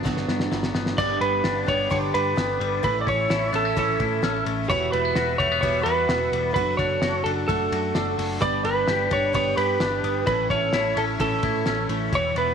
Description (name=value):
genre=jangly indie pop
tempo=129 BPM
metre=4/4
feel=straight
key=A mixolydian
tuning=A4 = 442 Hz
part: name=picked plugged-in twelve-string acoustic guitar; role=accompaniment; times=0.0-12.5 s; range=G2 to G4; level=-30 LUFS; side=right 11 dB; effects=none
part: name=clean electric guitar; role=arpeggios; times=0.0-12.5 s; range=G2 to G4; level=-29 LUFS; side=left 15 dB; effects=phaser
part: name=vintage muted picked electric bass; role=bass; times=0.0-12.5 s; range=E1 to A2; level=-30 LUFS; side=left 1 dB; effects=none
part: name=cloth-damped thuddy drum kit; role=drums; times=0.1-12.5 s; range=crash cymbal, hi-hat, kick drum, ride cymbal, snare drum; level=-29 LUFS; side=left 1 dB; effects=none
part: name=lightly driven lead guitar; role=melody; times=1.0-12.5 s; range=A4 to D5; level=-24 LUFS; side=right 1 dB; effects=slapback echo
part: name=phased analog pad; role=sustained chords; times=1.0-12.5 s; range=D4 to E6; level=-34 LUFS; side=right 1 dB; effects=phaser, chorus
room=light reverb, small room ambience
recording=1960s-style stereo with parts hard left and right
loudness=-21 LUFS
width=side -7 dB against mid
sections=1.0-12.5 A section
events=drum fill 0.0-1.0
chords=0.0 Gmaj7; 1.0 G; 2.8 A; 4.7 Emadd9; 6.6 D/F#; 8.4 G; 10.3 A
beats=0.05 0.51 | 0.98 1.44 1.91 2.37 | 2.84 3.31 3.77 4.24 | 4.70 5.16 5.63 6.09 | 6.56 7.02 7.49 7.95 | 8.42 8.88 9.35 9.81 | 10.27 10.74 11.20 11.67 | 12.13